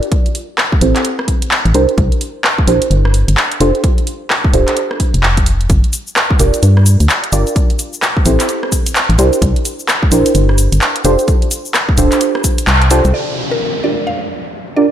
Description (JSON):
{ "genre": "UK garage, two-step garage", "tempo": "129 BPM", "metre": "4/4", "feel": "swing 61% on 16ths", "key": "G dorian", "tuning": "A4 = 440 Hz", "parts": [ { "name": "house drum kit", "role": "drums", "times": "0.0-14.9 s", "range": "cabasa, handclaps, hi-hat, rim click", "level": "-16 LUFS", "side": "equal", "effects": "overdrive, low-pass filter on snare, low-pass filter on hats, low-pass filter on cymbals, low-pass filter on perc, low-pass filter on room" }, { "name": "electronic kick drum", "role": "drums", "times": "0.1-12.6 s", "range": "none", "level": "-14 LUFS", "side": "equal", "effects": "overdrive" }, { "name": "deep mellow chord stab", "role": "stabs", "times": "0.8-14.9 s", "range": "C4 to D5", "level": "-16 LUFS", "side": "right 2 dB", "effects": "chorus, vintage 12-bit sampler grit, analog delay" }, { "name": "organ-like FM bass", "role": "bass", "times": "0.8-13.1 s", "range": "D1 to G2", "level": "-12 LUFS", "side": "equal", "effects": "none" }, { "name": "mallet-like synth pluck", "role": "melody", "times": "13.1-14.9 s", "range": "Bb4 to F5", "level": "-22 LUFS", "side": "left 1 dB", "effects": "chorus, analog delay" }, { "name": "downlifter", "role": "sound effects", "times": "13.1-14.9 s", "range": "none", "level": "-21 LUFS", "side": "equal", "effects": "none" } ], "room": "moderate plate reverb, RT60 1.5 s", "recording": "dreamy mix soaked in reverb", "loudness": "-11 LUFS", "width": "side -10 dB against mid", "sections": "0.0-13.1 A section; 13.1-14.9 B section", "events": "filter sweep on synth stab 0.0-13.1, 13.1-14.9; kick drops out 12.7-13.1; band accent 12.7", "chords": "0.1 Am7; 1.7 C9; 3.6 F69; 5.7 Gm7; 7.6 Am7; 9.2 C9; 11.0 F69; 13.1 Gm7" }